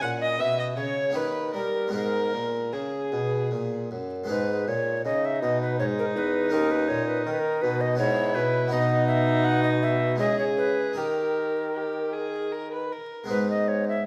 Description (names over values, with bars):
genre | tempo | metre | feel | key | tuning
classical, baroque-style sonata movement with continuo | 75-83 BPM | 3/4 | rubato | G# minor | A4 = 440 Hz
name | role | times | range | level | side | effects
mellow tenor recorder | melody | 0.0-14.1 s | G#4 to F#5 | -30 LUFS | equal | none
warm violin | second line | 0.0-13.3 s | D#4 to F#5 | -32 LUFS | equal | none
harpsichord | accompaniment | 0.0-14.1 s | D#2 to A#4 | -33 LUFS | equal | none
mellow bassoon | bass | 0.0-14.0 s | D#2 to G3 | -32 LUFS | equal | none
room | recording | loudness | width
wet recital hall reverb, RT60 1.3 s | vinyl crackle | -26 LUFS | mono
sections
0.0-4.3 A section; 4.3-14.1 B section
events
none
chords
0.0 C#m; 1.2 D#; 1.9 G#m; 6.5 D#7; 8.0 G#m; 8.7 B; 10.2 C#m; 11.0 D#; 13.3 G#m